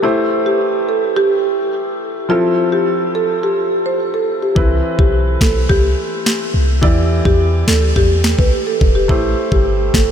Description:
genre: dancehall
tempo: 106 BPM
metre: 4/4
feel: straight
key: unclear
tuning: A4 = 443 Hz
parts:
  - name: marimba with medium mallets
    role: melody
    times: 0.0-10.1 s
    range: E4 to C5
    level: -17 LUFS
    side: right 1 dB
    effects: diffuse ambient delay
  - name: clear concert grand piano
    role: accompaniment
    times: 0.0-10.1 s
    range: E3 to D5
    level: -21 LUFS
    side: left 1 dB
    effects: none
  - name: clean 808-style bass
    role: bass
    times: 4.6-10.1 s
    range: E1 to E2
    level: -16 LUFS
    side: equal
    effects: none
  - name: island pop drum kit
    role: drums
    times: 4.6-10.1 s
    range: finger snaps, kick drum, snare drum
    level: -16 LUFS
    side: equal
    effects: overdrive
room: moderate huge ambient reverb, RT60 7.7 s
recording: dreamy mix soaked in reverb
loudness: -13 LUFS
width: side -8 dB against mid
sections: 0.0-10.1 A section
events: none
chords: 0.0 Am7; 2.3 Fmaj7; 4.6 Cmaj7; 6.8 Em7; 9.1 Am7

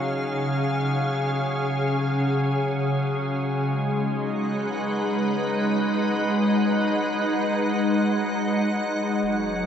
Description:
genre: ambient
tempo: free time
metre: none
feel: none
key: unclear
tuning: A4 = 437 Hz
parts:
  - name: soft additive organ-like pad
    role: sustained chords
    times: 0.0-9.7 s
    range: C#3 to F#5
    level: -22 LUFS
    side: equal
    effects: ensemble chorus, built-in reverb
  - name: hand-pumped harmonium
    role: drone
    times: 0.0-9.3 s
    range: F#3 to F#4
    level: -36 LUFS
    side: right 1 dB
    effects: none
  - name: round analog bass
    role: bass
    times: 9.2-9.7 s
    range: F#1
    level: -45 LUFS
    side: right 1 dB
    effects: none
room: wet cathedral reverb, RT60 6.2 s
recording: none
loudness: -22 LUFS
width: side -8 dB against mid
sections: 0.0-9.2 A section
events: fade-out on harmonium 0.0-9.2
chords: 0.0 C#; 3.6 G#m7

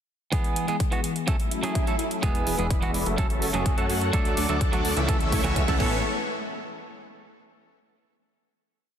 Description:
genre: EDM, festival progressive house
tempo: 126 BPM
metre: 4/4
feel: straight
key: unclear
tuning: A4 = 439 Hz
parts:
  - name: clean electric guitar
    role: accompaniment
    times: 0.3-6.0 s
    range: E3 to A4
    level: -30 LUFS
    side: right 4 dB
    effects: sidechain pumping, ping-pong delay
  - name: lush unison pad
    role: sustained chords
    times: 0.3-6.0 s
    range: E3 to D6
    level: -33 LUFS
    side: left 2 dB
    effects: chorus, phaser, sidechain pumping
  - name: big-room dance drum kit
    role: drums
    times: 0.3-5.9 s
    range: crash cymbal, hi-hat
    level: -34 LUFS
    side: right 1 dB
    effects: overdrive, high-pass filter on hats, small room reverb, high-pass filter on cymbals
  - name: electronic kick drum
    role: drums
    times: 0.3-5.9 s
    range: none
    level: -26 LUFS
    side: equal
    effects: overdrive, small room reverb
  - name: swell and riser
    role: sound effects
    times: 1.4-6.0 s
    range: none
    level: -37 LUFS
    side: equal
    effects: none
  - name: big supersaw lead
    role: riff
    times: 2.2-6.0 s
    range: E3 to F#5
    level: -29 LUFS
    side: equal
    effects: sidechain pumping, low-pass filter, ping-pong delay
  - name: fat analog bass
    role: bass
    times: 2.2-6.0 s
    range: E1 to F#2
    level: -30 LUFS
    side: equal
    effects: sidechain pumping
room: moderate lush hall reverb, RT60 2.3 s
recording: dense, heavily limited modern master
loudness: -22 LUFS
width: side -9 dB against mid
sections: 0.3-2.2 intro; 2.2-6.0 build; 6.0-7.9 final hit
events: filter sweep on analog synth pad 0.3-2.2; swell 1.4-2.2; build-up 2.2-6.0; filter sweep on supersaw synth 2.2-6.0; drum fill 4.1-6.0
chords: 0.3 E; 1.3 F#m; 2.2 E; 3.2 F#m; 4.1 D; 5.1 A/C#; 5.8 Aadd9; 6.0 N.C.

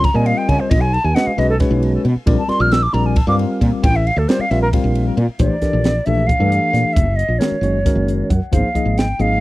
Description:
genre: electric jazz fusion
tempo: 269 BPM (eighths)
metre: 7/8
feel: straight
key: unclear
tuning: A4 = 443 Hz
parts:
  - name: hollow concert flute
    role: melody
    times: 0.0-9.4 s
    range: A4 to F6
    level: -20 LUFS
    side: equal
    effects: none
  - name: bright tine electric piano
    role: accompaniment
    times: 0.0-9.4 s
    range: Eb3 to Gb5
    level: -20 LUFS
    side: left 2 dB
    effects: medium stereo tremolo
  - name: woody fretless electric bass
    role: bass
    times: 0.0-9.4 s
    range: Gb1 to Db3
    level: -17 LUFS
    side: equal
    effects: ensemble chorus
  - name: crisp fusion drum kit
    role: drums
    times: 0.0-9.3 s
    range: hi-hat, kick drum, ride cymbal, snare drum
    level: -18 LUFS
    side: equal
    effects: none
room: small room ambience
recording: dry, close 1970s-style studio recording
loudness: -14 LUFS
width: side -18 dB against mid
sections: 0.0-5.4 A section; 5.4-9.4 B section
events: flute solo 0.0-5.4; tine electric piano fill 7.9-8.5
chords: 0.0 Dbmaj9; 0.7 B; 2.3 Bb; 5.4 Bbmaj7; 7.0 Gbadd9; 8.5 Ab69

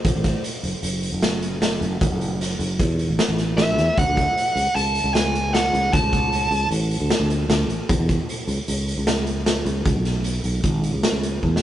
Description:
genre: progressive instrumental, band music in an uneven meter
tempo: 153 BPM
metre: 5/4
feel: straight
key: unclear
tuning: A4 = 436 Hz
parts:
  - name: sustaining fretless electric bass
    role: bass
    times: 0.0-11.6 s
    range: F#1 to E2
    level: -23 LUFS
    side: equal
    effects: none
  - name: raw garage drum kit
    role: drums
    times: 0.0-11.6 s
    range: hi-hat, kick drum, snare drum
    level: -22 LUFS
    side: equal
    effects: none
  - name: high-gain lead guitar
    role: melody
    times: 3.6-6.7 s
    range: E5 to A5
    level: -23 LUFS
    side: right 1 dB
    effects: distortion, tape echo
room: moderate studio reverb, RT60 0.5 s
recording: rough rehearsal-room recording, nothing above 10.9 kHz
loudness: -19 LUFS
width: side -12 dB against mid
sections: 0.0-11.6 A section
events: drum fill 11.4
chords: 0.0 A5; 4.0 D; 7.9 N.C.; 9.9 C#7(no3)

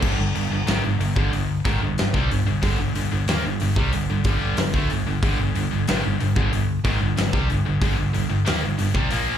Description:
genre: hard rock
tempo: 92 BPM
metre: 4/4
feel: straight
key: G minor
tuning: A4 = 440 Hz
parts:
  - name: cranked stack guitar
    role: riff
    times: 0.0-9.4 s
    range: G2 to Bb3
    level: -27 LUFS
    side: right 10 dB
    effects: overdrive, slapback echo
  - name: scooped high-gain guitar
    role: riff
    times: 0.0-9.4 s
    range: G2 to Bb3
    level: -26 LUFS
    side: left 8 dB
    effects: distortion, slapback echo
  - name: hollow-body short-scale fingered electric bass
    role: bass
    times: 0.0-9.4 s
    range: G1 to Eb2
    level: -25 LUFS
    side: equal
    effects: none
  - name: big rock drum kit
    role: drums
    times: 0.0-9.3 s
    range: crash cymbal, hi-hat, kick drum, snare drum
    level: -25 LUFS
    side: equal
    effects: none
room: light reverb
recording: live gig heard through the venue's PA, club reverb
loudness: -20 LUFS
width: side -9 dB against mid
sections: 0.0-9.4 A section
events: none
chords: 0.0 Gm

